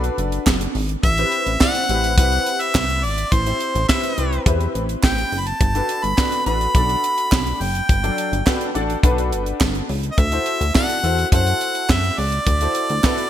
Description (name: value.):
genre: early-eighties boogie funk.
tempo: 105 BPM.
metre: 4/4.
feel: straight.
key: unclear.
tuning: A4 = 441 Hz.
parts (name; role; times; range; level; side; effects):
warm concert grand piano; accompaniment; 0.0-13.2 s; F#3 to D5; -25 LUFS; left 3 dB; analog chorus.
chorused synth bass; bass; 0.0-13.0 s; F#1 to F#2; -22 LUFS; equal; none.
tight funk drum kit; drums; 0.0-13.3 s; handclaps, hi-hat, kick drum, snare drum; -20 LUFS; equal; gated reverb.
group handclap; percussion; 0.5-13.2 s; none; -32 LUFS; right 7 dB; none.
clear harmonica; melody; 1.0-13.3 s; C5 to B5; -22 LUFS; equal; none.
room: light reverb.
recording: bright 1980s-style digital production.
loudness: -17 LUFS.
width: side -11 dB against mid.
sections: 0.0-13.3 A section.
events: none.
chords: 0.0 Gmaj7 (rootless); 1.0 Am7; 5.6 Gmaj7; 10.2 D7.